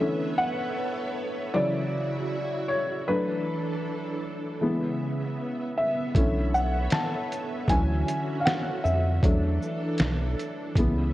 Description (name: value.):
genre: lo-fi hip hop.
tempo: 78 BPM.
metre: 4/4.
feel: swing 63% on 16ths.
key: unclear.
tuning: A4 = 440 Hz.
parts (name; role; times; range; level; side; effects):
felt-muted upright piano; accompaniment; 0.0-11.1 s; C#3 to A5; -28 LUFS; left 1 dB; cassette tape.
string machine, violas; sustained chords; 0.0-11.1 s; C#3 to E5; -32 LUFS; right 1 dB; ensemble chorus.
trip hop sampler-style drum kit; drums; 6.1-11.0 s; finger snaps, hi-hat, kick drum, shaker, snare drum; -25 LUFS; equal; none.
round analog bass; bass; 6.2-11.1 s; B1 to E#2; -26 LUFS; equal; none.
room: light reverb.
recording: worn, warbling old tape, cassette tape, warbly pitch drift.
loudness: -24 LUFS.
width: side -15 dB against mid.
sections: 0.0-11.1 A section.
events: felt piano solo 0.0-11.1.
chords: 0.0 Bm11; 1.5 Dmaj9; 3.1 E7sus4; 4.6 C#m7; 6.2 Bm11; 7.7 Dmaj9; 9.2 E7sus4.